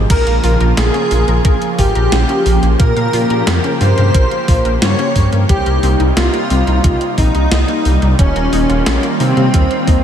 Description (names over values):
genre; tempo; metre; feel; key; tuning
synthwave; 89 BPM; 4/4; straight; Bb dorian; A4 = 440 Hz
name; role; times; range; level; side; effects
lush unison pad; sustained chords; 0.0-10.0 s; C3 to G4; -20 LUFS; right 1 dB; chorus, phaser, vintage 12-bit sampler grit, sidechain pumping
dark detuned saw bass; bass; 0.0-10.0 s; Eb1 to C3; -14 LUFS; equal; none
soft supersaw; melody; 0.1-10.0 s; C4 to Db5; -18 LUFS; equal; vintage 12-bit sampler grit, ping-pong delay
airy dreamy lead; second line; 0.1-10.0 s; C4 to Db5; -24 LUFS; equal; chorus, cassette tape, tape echo
analog pluck; arpeggios; 0.1-9.9 s; G3 to F5; -25 LUFS; left 2 dB; chorus, tape echo
electronic kick drum; drums; 0.1-10.0 s; none; -13 LUFS; equal; none
gated 80s digital drum machine; drums; 0.1-10.0 s; crash cymbal, hi-hat, snare drum, toms; -22 LUFS; equal; gated reverb, gated reverb snare
room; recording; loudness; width
moderate huge ambient reverb, RT60 8.2 s; dreamy mix soaked in reverb; -11 LUFS; side -9 dB against mid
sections
0.1-10.0 A section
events
none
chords
0.1 Bbm; 5.5 Cm7; 8.2 Ebadd9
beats
| 0.10 0.78 1.45 2.12 | 2.80 3.47 4.15 4.82 | 5.49 6.17 6.84 7.52 | 8.19 8.87 9.54